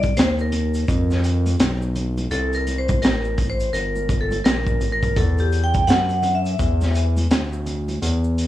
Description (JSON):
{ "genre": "hip hop, jazz-hop", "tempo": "84 BPM", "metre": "4/4", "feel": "swing 61% on 16ths", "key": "unclear", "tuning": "A4 = 441 Hz", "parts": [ { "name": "vibraphone with medium hard mallets", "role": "accompaniment", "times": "0.0-7.0 s", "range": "G4 to G5", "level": "-24 LUFS", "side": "left 1 dB", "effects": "none" }, { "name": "smooth synth bass", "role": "bass", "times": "0.0-8.5 s", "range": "G1 to F#2", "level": "-21 LUFS", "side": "equal", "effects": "none" }, { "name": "crunchy breakbeat drum kit", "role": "drums", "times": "0.0-8.5 s", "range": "hi-hat, kick drum, snare drum", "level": "-22 LUFS", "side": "equal", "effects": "vintage 12-bit sampler grit" }, { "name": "tube shaker and congas", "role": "percussion", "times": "0.0-8.5 s", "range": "none", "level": "-35 LUFS", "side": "right 4 dB", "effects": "none" } ], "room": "little or no reverb", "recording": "dry, gritty hardware recording, small room ambience", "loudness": "-18 LUFS", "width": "side -14 dB against mid", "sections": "0.0-8.5 A section", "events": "vibraphone solo 0.0-8.5", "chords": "0.0 Cm7; 5.2 Esus2", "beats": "0.17 0.88 1.60 | 2.31 3.02 3.74 4.45 | 5.17 5.88 6.60 7.31 | 8.02" }